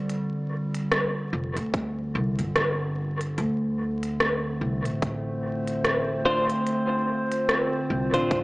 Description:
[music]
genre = ambient dub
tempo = 73 BPM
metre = 4/4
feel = swing 58% on 16ths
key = unclear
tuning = A4 = 440 Hz
[part]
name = warbly tape-like pad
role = sustained chords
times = 0.0-8.4 s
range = D3 to C5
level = -28 LUFS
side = equal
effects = chorus, built-in reverb
[part]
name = organic electronic drum kit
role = drums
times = 0.1-8.4 s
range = hi-hat, rim click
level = -27 LUFS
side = equal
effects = overdrive, dub echo
[part]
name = upright bass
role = bass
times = 1.3-8.4 s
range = F1 to D2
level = -29 LUFS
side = equal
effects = none
[part]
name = electronic kick drum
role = drums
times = 1.7-8.4 s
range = none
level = -29 LUFS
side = equal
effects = overdrive
[part]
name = clean electric guitar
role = stabs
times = 6.3-8.4 s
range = D4 to C5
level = -25 LUFS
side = equal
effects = dub echo
[sound]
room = moderate spring reverb, RT60 2.9 s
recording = vinyl crackle, small speaker sound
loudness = -24 LUFS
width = side -22 dB against mid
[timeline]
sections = 0.0-8.4 A section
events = none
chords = 0.0 G7sus4; 3.4 Dm7

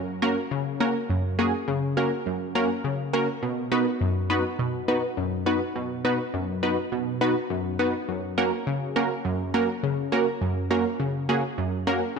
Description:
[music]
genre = pop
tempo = 103 BPM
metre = 4/4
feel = straight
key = F# major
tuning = A4 = 440 Hz
[part]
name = funky polysynth comp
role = solo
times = 0.0-12.2 s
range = F#2 to B4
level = -23 LUFS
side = equal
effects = chorus, digital delay
[sound]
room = wet lush hall reverb, RT60 2.4 s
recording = dark, warm production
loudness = -23 LUFS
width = side -5 dB against mid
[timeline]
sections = 0.0-12.2 A section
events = none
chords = 0.0 F#; 3.4 B; 8.1 F#

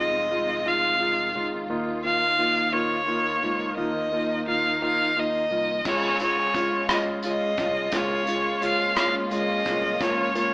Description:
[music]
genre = six-eight pop ballad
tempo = 58 BPM (dotted quarters)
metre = 6/8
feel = straight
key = Db major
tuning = A4 = 440 Hz
[part]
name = warm violin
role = melody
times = 0.0-10.5 s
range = Db5 to F5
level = -23 LUFS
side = equal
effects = none
[part]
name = warm concert grand piano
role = accompaniment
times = 0.0-10.5 s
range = Ab3 to F4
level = -28 LUFS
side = equal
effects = none
[part]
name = warm studio string section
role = sustained chords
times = 0.0-10.5 s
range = Eb3 to F4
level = -33 LUFS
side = equal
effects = none
[part]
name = fingered electric bass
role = bass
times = 0.0-10.5 s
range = F1 to Eb2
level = -37 LUFS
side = equal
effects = none
[part]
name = picked steel-string acoustic guitar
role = arpeggios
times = 5.9-10.5 s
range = F3 to F4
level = -35 LUFS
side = equal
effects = none
[part]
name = unplugged drum kit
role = drums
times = 5.9-10.5 s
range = crash cymbal, hi-hat, kick drum, rim click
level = -29 LUFS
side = equal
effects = none
[sound]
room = wet studio reverb, RT60 0.9 s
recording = band playing live in one room, AM radio sound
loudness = -21 LUFS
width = side -39 dB against mid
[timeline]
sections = 0.0-5.9 A section; 5.9-10.5 B section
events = none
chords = 0.0 Fm7; 1.7 Ebsus2; 5.9 Db; 10.0 Bbm

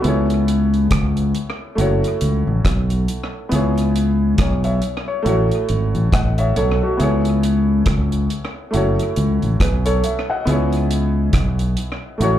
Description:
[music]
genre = lovers rock reggae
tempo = 69 BPM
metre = 4/4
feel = swing 59% on 16ths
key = C# minor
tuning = A4 = 445 Hz
[part]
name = clear concert grand piano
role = accompaniment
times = 0.0-12.4 s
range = A3 to F#5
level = -22 LUFS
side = equal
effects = plate reverb, slapback echo
[part]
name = fingered electric bass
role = bass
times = 0.0-12.4 s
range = F#1 to C#2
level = -17 LUFS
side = equal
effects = none
[part]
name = deep reggae drum kit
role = drums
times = 0.0-12.4 s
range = hi-hat, kick drum, rim click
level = -22 LUFS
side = equal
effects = tape echo
[sound]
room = little or no reverb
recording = live gig heard through the venue's PA, club reverb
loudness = -16 LUFS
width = side -11 dB against mid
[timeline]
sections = 0.0-12.4 A section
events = none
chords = 0.0 C#m7; 1.8 F#m7; 3.5 C#m7; 5.3 A6; 7.0 C#m7; 8.7 F#m7; 10.5 C#m7

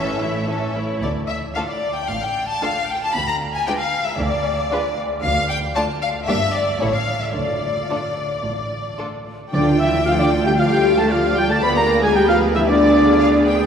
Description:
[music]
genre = quick classical-period movement for symphony orchestra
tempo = 114 BPM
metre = 4/4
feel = straight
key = D minor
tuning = A4 = 440 Hz
[part]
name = rich studio violin section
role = melody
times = 0.0-13.7 s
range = B4 to B5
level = -23 LUFS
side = left 2 dB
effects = none
[part]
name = rich studio violin section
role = second line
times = 0.0-13.4 s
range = C#4 to B5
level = -27 LUFS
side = left 2 dB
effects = none
[part]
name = rich studio viola section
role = accompaniment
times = 0.0-13.7 s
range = E3 to Ab4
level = -28 LUFS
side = right 2 dB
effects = none
[part]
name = rich studio double bass section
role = bass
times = 0.0-13.7 s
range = G1 to D2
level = -26 LUFS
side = right 2 dB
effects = none
[part]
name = warm studio cello section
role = bass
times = 0.0-13.4 s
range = D2 to B3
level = -29 LUFS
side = right 2 dB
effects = none
[part]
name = timpani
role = percussion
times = 7.4-10.3 s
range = D3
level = -30 LUFS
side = right 2 dB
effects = none
[part]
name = clear oboe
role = second line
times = 9.5-13.4 s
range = D5 to B5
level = -24 LUFS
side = right 1 dB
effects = none
[part]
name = mellow silver concert flute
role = second line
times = 9.5-13.5 s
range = D5 to B5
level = -24 LUFS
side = right 1 dB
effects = none
[part]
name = mellow French horn section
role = sustained chords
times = 9.5-13.4 s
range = D4 to B4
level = -17 LUFS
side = left 1 dB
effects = none
[sound]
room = wet cathedral reverb, RT60 5.2 s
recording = recorded in a church or concert hall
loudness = -17 LUFS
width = side -7 dB against mid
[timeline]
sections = 0.0-9.5 A section; 9.5-13.7 B section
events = none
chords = 0.0 A; 1.0 Dm; 6.3 Gm; 6.8 A5; 7.4 D5; 9.5 Dm; 11.6 Ddim7(no3)

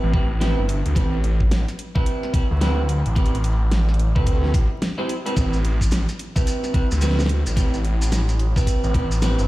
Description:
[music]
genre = glitch hop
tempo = 109 BPM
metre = 4/4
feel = swing 62% on 16ths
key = A minor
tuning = A4 = 435 Hz
[part]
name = electric guitar at the edge of break-up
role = stabs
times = 0.0-9.4 s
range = C4 to C5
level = -27 LUFS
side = right 1 dB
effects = wide subtle chorus, sidechain pumping, ping-pong delay
[part]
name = phased detuned saw bass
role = bass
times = 0.0-9.5 s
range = G1 to D2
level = -20 LUFS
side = equal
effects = phaser, overdrive
[part]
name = electronic kick drum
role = drums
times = 0.1-9.1 s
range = none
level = -20 LUFS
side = equal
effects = none
[part]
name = dubstep drum kit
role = drums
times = 0.4-9.4 s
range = hi-hat, snare drum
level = -29 LUFS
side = equal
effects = none
[part]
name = maracas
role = percussion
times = 5.4-9.5 s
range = none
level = -34 LUFS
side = right 1 dB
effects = none
[sound]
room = little or no reverb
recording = played on a big sound system in a bare room, stone room reverb, vinyl crackle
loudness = -18 LUFS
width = side -17 dB against mid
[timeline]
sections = 0.0-9.5 A section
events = none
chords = 0.0 Am7

